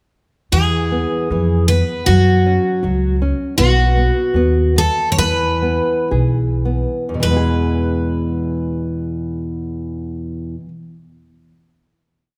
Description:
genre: fado-style ballad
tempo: 50-81 BPM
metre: 2/4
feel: rubato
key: E major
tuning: A4 = 440 Hz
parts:
  - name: picked twelve-string acoustic guitar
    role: melody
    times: 0.5-10.7 s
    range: F#4 to C#5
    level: -21 LUFS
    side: equal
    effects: none
  - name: nylon-string guitar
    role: accompaniment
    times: 0.5-10.8 s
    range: E2 to G#4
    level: -23 LUFS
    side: equal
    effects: none
  - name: upright bass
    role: bass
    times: 0.5-10.7 s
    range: B1 to F#2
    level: -20 LUFS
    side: equal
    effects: none
room: light reverb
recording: close, detailed microphones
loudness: -17 LUFS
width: mono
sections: 0.5-7.2 A section; 7.2-11.9 final chord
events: slowing down 3.6-7.2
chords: 0.5 E; 2.1 F#5; 3.6 B; 5.2 E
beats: | 0.52 1.31 | 2.08 2.83 | 3.57 4.34 | 5.17 6.11 | 7.22 8.42 | 9.59 10.75

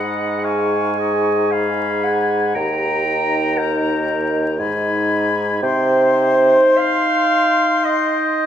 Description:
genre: classical, slow romantic movement for wind quintet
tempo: 50-59 BPM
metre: 3/4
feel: rubato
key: unclear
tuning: A4 = 440 Hz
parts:
  - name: silver concert flute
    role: melody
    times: 0.0-8.5 s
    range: Bb5 to Db6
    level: -25 LUFS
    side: left 7 dB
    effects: none
  - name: clear oboe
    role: second line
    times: 0.0-8.5 s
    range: Eb5 to Bb5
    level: -24 LUFS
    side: left 6 dB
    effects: none
  - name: mellow French horn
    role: accompaniment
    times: 0.0-8.5 s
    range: Eb4 to Ab4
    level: -24 LUFS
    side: left 2 dB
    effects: none
  - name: warm clarinet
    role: accompaniment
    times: 0.0-8.5 s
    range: Bb4 to Ab5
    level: -18 LUFS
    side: right 3 dB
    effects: none
  - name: warm bassoon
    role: bass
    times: 0.0-6.6 s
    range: Eb2 to C3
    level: -20 LUFS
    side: right 1 dB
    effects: none
room: wet recital hall reverb, RT60 1.8 s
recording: minimal, uncompressed stereo recording, vinyl crackle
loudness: -15 LUFS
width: side -9 dB against mid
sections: 0.0-8.5 A section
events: none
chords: 0.0 Abm7; 2.6 Eb; 4.6 Abm; 5.6 Cm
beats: 0.45 1.52 | 2.55 3.58 4.59 | 5.63 6.78 7.85

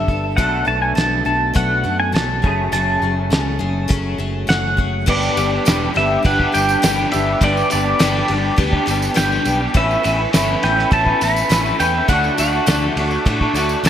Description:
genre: folk rock and heartland rock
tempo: 103 BPM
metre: 4/4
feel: straight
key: unclear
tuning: A4 = 440 Hz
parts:
  - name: pedal steel guitar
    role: melody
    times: 0.0-13.9 s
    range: D5 to B5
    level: -20 LUFS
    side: equal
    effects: analog chorus, digital delay
  - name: picked steel-string acoustic guitar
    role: accompaniment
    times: 0.0-13.9 s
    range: F#2 to B4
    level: -25 LUFS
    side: left 5 dB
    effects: wide subtle chorus
  - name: tonewheel organ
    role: sustained chords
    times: 0.0-13.9 s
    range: A3 to D5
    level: -31 LUFS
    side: equal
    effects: none
  - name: electric guitar through a small old amp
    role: riff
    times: 0.0-13.9 s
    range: F#2 to A4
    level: -22 LUFS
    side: equal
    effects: ensemble chorus
  - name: fingered electric bass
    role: bass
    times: 0.0-13.9 s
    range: E1 to A2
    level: -23 LUFS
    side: equal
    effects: none
  - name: cloth-damped thuddy drum kit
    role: drums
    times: 0.1-13.9 s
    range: crash cymbal, hi-hat, kick drum, ride cymbal, snare drum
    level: -20 LUFS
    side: equal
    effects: gated reverb
  - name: tambourine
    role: percussion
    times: 5.2-13.9 s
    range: none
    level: -30 LUFS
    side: right 6 dB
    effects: none
room: moderate lush hall reverb, RT60 2.7 s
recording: bright 1980s-style digital production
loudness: -15 LUFS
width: side -10 dB against mid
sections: 0.0-5.1 A section; 5.1-13.9 B section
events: none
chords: 0.4 Bm7; 2.4 F#madd9; 5.1 G; 9.8 Aadd9; 12.1 D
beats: | 0.38 0.97 1.56 2.14 | 2.73 3.32 3.91 4.49 | 5.08 5.66 6.25 6.83 | 7.42 8.00 8.58 9.17 | 9.75 10.34 10.92 11.50 | 12.09 12.67 13.26 13.84

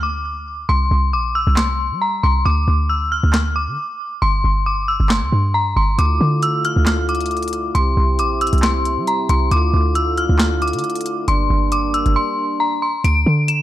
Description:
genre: hip hop, trap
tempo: 136 BPM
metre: 4/4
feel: half-time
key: D minor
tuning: A4 = 442 Hz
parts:
  - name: dark detuned synth bell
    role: melody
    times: 0.0-13.6 s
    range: Bb5 to E7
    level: -20 LUFS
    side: left 2 dB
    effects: chorus, ping-pong delay
  - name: short 808-style bass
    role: bass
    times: 0.0-13.6 s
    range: G1 to G3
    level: -18 LUFS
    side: equal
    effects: none
  - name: trap drum kit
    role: drums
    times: 1.6-13.6 s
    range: handclaps, hi-hat, snare drum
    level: -23 LUFS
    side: equal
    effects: none
  - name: dark brass ensemble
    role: sustained chords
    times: 6.0-13.0 s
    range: C3 to G4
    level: -24 LUFS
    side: right 2 dB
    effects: none
room: light reverb, digital ambience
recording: dark, warm production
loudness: -15 LUFS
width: side -13 dB against mid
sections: 0.0-13.0 A section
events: break 0.0-6.0, 12.2-13.0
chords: 0.0 N.C.; 0.7 C5; 2.5 N.C.; 4.2 G5; 6.0 Dmadd9; 7.8 C; 9.5 Dmadd9; 11.3 Gm; 13.0 Dsus2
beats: 0.25 | 0.69 1.13 1.57 2.01 | 2.46 2.90 3.34 3.78 | 4.22 4.66 5.10 5.54 | 5.99 6.43 6.87 7.31 | 7.75 8.19 8.63 9.07 | 9.51 9.96 10.40 10.84 | 11.28 11.72 12.16 12.60 | 13.04 13.48

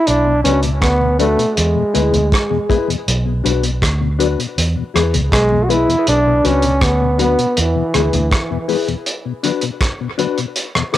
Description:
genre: dub reggae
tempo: 80 BPM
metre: 4/4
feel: straight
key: B dorian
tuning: A4 = 440 Hz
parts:
  - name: warm trombone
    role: melody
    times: 0.0-8.7 s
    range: E3 to F#4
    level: -16 LUFS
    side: right 1 dB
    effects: cassette tape, dub echo
  - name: vintage muted fingered electric bass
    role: bass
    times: 0.1-8.3 s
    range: B1 to E2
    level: -18 LUFS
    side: right 1 dB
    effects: none
  - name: cloth-damped thuddy drum kit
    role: drums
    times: 0.1-11.0 s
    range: hi-hat, kick drum, rim click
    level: -19 LUFS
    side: right 1 dB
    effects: cassette tape
  - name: mellow tonewheel organ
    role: accompaniment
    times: 0.3-11.0 s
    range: E2 to E4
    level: -21 LUFS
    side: left 7 dB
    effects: chorus vibrato, slow rotary speaker, cassette tape
  - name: reed electric piano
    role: stabs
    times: 0.4-11.0 s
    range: D4 to B4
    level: -23 LUFS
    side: left 7 dB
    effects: fast tremolo, cassette tape, dub echo
room: moderate booth ambience, RT60 0.2 s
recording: home recording on cassette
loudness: -14 LUFS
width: side -13 dB against mid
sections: 0.1-11.0 A section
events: break 9.1-11.0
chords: 0.1 Bm; 1.6 E; 3.1 Bm; 4.6 E; 6.1 Bm; 7.6 E; 9.1 Bm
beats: | 0.07 0.82 1.57 2.32 | 3.07 3.82 4.57 5.32 | 6.07 6.82 7.57 8.32 | 9.06 9.81 10.56

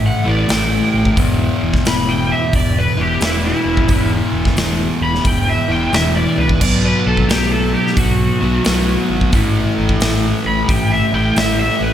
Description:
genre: blues rock power trio and southern rock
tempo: 88 BPM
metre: 4/4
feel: swing 66% on 8ths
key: unclear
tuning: A4 = 436 Hz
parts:
  - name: fuzz guitar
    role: riff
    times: 0.0-11.9 s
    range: E2 to B3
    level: -18 LUFS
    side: equal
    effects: distortion
  - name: overdriven fingered electric bass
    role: bass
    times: 0.0-11.9 s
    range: E1 to C#2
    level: -21 LUFS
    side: equal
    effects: none
  - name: overdriven slide guitar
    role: melody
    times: 0.1-11.9 s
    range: E4 to B5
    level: -20 LUFS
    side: equal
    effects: none
  - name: big rock drum kit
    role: drums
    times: 0.5-11.6 s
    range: crash cymbal, hi-hat, kick drum, snare drum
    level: -18 LUFS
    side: equal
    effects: none
room: light reverb, studio reverb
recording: none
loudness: -13 LUFS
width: side -10 dB against mid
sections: 0.0-11.9 A section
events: electric slide guitar solo 0.0-11.9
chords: 0.0 A5; 1.2 E5; 6.6 B5; 9.3 A5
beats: 0.49 | 1.17 1.85 2.53 3.21 | 3.89 4.57 5.25 5.93 | 6.61 7.29 7.97 8.65 | 9.33 10.01 10.69 11.37

